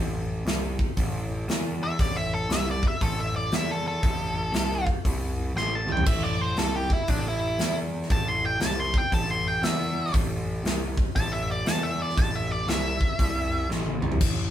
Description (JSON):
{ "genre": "blues rock power trio and southern rock", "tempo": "118 BPM", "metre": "4/4", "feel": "swing 64% on 8ths", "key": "A minor", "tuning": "A4 = 441 Hz", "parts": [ { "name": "fuzz picked electric bass", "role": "bass", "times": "0.0-14.5 s", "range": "A1 to E2", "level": "-29 LUFS", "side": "equal", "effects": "overdrive" }, { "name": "big rock drum kit", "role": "drums", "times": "0.5-14.4 s", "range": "crash cymbal, hi-hat, kick drum, snare drum, toms", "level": "-26 LUFS", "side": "equal", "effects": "none" }, { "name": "octave-fuzz lead guitar", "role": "melody", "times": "1.8-13.7 s", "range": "D4 to C6", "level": "-28 LUFS", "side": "equal", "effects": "distortion" } ], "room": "moderate studio reverb, RT60 0.6 s", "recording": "band playing live in one room", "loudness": "-24 LUFS", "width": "side -11 dB against mid", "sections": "0.0-14.2 A section", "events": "lead electric guitar solo 0.0-14.5; drum fill 5.6-6.1, 13.7-14.2", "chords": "0.0 Am; 1.5 N.C.; 2.0 Am; 3.5 Esus4; 4.0 Am; 5.1 N.C.; 5.6 Am; 7.6 N.C.; 8.1 Am; 9.6 N.C.; 10.1 Am; 11.7 E7sus4; 12.2 Am; 13.2 C; 13.7 Am" }